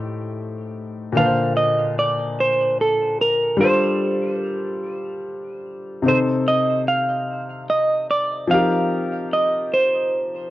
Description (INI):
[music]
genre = R&B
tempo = 49 BPM (dotted quarters)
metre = 6/8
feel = straight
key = C dorian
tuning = A4 = 440 Hz
[part]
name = warm grand piano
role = accompaniment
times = 0.0-10.5 s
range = A2 to A5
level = -23 LUFS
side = left 2 dB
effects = none
[part]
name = semi-hollow electric guitar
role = melody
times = 1.2-10.5 s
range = A4 to F5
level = -19 LUFS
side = right 1 dB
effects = none
[sound]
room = moderate studio ambience, RT60 0.5 s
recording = worn, warbling old tape, cassette tape, warbly pitch drift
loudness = -18 LUFS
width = side -15 dB against mid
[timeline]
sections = 0.0-10.5 A section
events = none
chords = 0.0 Am7b5; 1.1 Bbmaj9; 3.6 G7sus4; 6.0 Cm6; 8.5 F9sus4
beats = | 1.15 2.37 | 3.60 4.82 | 6.04 7.27 | 8.49 9.72